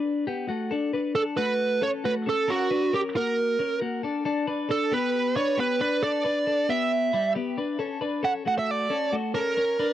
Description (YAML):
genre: indie pop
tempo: 135 BPM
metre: 4/4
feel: straight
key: B minor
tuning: A4 = 440 Hz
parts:
  - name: twelve-string electric guitar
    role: arpeggios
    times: 0.0-9.9 s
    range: G3 to B4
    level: -27 LUFS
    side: left 4 dB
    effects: tape echo
  - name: smooth overdriven lead guitar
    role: melody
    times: 1.2-9.9 s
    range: F#4 to F#5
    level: -24 LUFS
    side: right 3 dB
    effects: tape echo
room: light reverb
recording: dry, close 1970s-style studio recording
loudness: -23 LUFS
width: side -12 dB against mid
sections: 0.7-9.9 A section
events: none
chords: 0.0 Bm; 0.7 Bm7; 2.5 F#; 4.0 Bm7; 5.8 G6; 7.8 Dmaj7